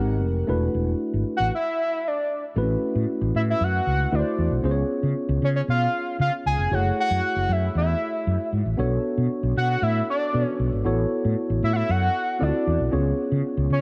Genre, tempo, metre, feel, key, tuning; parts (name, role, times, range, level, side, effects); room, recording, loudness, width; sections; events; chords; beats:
polished 1980s jazz-funk pop; 116 BPM; 4/4; straight; A major; A4 = 440 Hz
tine electric piano; accompaniment; 0.0-13.8 s; G#3 to D5; -29 LUFS; equal; analog chorus
mellow fretless electric bass; bass; 0.0-13.8 s; E1 to C#3; -26 LUFS; equal
fat analog lead; melody; 1.4-13.8 s; C#5 to G#5; -28 LUFS; equal
light reverb, digital ambience; -24 LUFS; mono
0.0-2.6 A section; 2.6-13.8 B section
stop 1.5-2.6
0.5 E9sus4; 2.6 A69; 4.1 D9; 4.6 C#7; 6.7 F#m7; 8.8 Bm9; 10.9 A69; 12.4 D9; 12.9 C#7
| 0.49 1.00 1.52 2.04 | 2.56 3.08 3.60 4.12 | 4.63 5.15 5.67 6.19 | 6.71 7.23 7.75 8.26 | 8.78 9.30 9.82 10.34 | 10.85 11.37 11.89 12.41 | 12.93 13.44